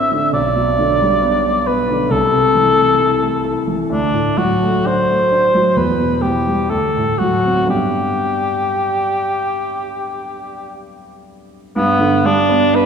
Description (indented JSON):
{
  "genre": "classical, romantic duo for cor anglais and grand piano",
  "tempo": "57-68 BPM",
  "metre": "4/4",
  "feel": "rubato",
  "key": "G major",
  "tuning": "A4 = 440 Hz",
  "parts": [
    { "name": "mellow cor anglais", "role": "melody", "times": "0.0-12.9 s", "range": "B3 to E5", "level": "-16 LUFS", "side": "left 1 dB", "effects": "none" },
    { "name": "clear concert grand piano", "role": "accompaniment", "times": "0.0-12.9 s", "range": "A1 to E4", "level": "-18 LUFS", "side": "right 2 dB", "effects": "none" }
  ],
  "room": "wet concert hall reverb, RT60 2.3 s",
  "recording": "heard from further back in the room",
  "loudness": "-14 LUFS",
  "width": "side -6 dB against mid",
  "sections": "0.0-11.8 A section; 11.8-12.9 B section",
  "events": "none",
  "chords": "0.3 G/B; 2.1 Am/C; 3.9 D; 5.8 Em; 6.7 D7; 7.7 G",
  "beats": "| 0.34 1.23 2.12 3.00 | 3.90 4.86 5.76 6.69 | 7.69 8.73 9.75 10.76 | 11.76 12.74"
}